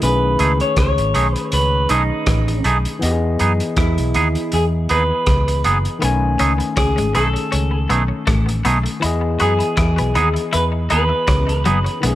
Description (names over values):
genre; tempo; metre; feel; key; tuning
lovers rock reggae; 80 BPM; 4/4; swing 56% on 16ths; E major; A4 = 440 Hz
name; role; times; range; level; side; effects
electric guitar through a small old amp; melody; 0.0-11.6 s; D#4 to C#5; -21 LUFS; right 1 dB; tape echo
barky tine electric piano; accompaniment; 0.0-12.2 s; D#3 to G#5; -24 LUFS; left 4 dB; overdrive
vintage muted fingered electric bass; bass; 0.0-12.2 s; F#1 to F#2; -19 LUFS; equal; none
crunchy breakbeat drum kit; drums; 0.0-12.2 s; hi-hat, kick drum, rim click; -22 LUFS; equal; gated reverb
twangy electric guitar; stabs; 0.4-11.8 s; A3 to G#4; -22 LUFS; right 4 dB; none
twelve-string electric guitar; riff; 6.0-12.2 s; F#3 to F#4; -25 LUFS; left 5 dB; tape echo
room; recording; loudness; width
small room reverb; none; -15 LUFS; side -14 dB against mid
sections
0.0-12.2 A section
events
none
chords
0.0 B13; 3.0 Emaj7; 6.0 B13; 9.0 Emaj7